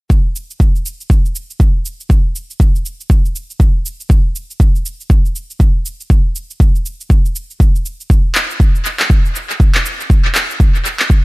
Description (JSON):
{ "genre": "afro house", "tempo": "120 BPM", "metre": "4/4", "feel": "swing 59% on 16ths", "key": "none", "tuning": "none", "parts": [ { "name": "electronic kick drum", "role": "drums", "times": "0.1-11.2 s", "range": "none", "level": "-10 LUFS", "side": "equal", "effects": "small room ambience" }, { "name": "electronic shaker and handclaps", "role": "drums", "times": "0.1-11.2 s", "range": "none", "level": "-19 LUFS", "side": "equal", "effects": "small room ambience, tape echo" } ], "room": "digital ambience", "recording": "echo-heavy mix", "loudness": "-12 LUFS", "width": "side -23 dB against mid", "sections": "0.1-11.2 A section", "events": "none", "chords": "none", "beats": "| 0.10 0.60 1.10 1.60 | 2.10 2.60 3.10 3.60 | 4.10 4.60 5.10 5.60 | 6.10 6.60 7.10 7.60 | 8.10 8.60 9.10 9.60 | 10.10 10.60 11.10" }